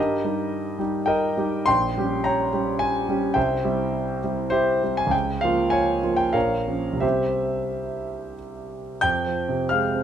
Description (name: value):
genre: classical, romantic character piece for solo piano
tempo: 82-110 BPM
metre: 3/4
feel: rubato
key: unclear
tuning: A4 = 439 Hz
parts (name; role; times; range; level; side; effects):
- warm concert grand piano; solo; 0.0-10.0 s; Bb1 to G6; -21 LUFS; equal; none
room: moderate recital hall reverb, RT60 1.6 s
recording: close, detailed microphones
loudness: -21 LUFS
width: side -9 dB against mid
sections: 0.0-9.0 A section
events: none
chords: 0.0 Eb/G; 1.7 Gdim/Bb; 3.4 C; 5.1 Db6; 6.3 Bbm; 7.0 C; 9.0 Fm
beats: 0.53 1.09 | 1.70 2.26 2.81 | 3.36 3.94 4.53 | 5.13 5.72 6.35 | 7.03 7.74 8.38 | 9.04 9.71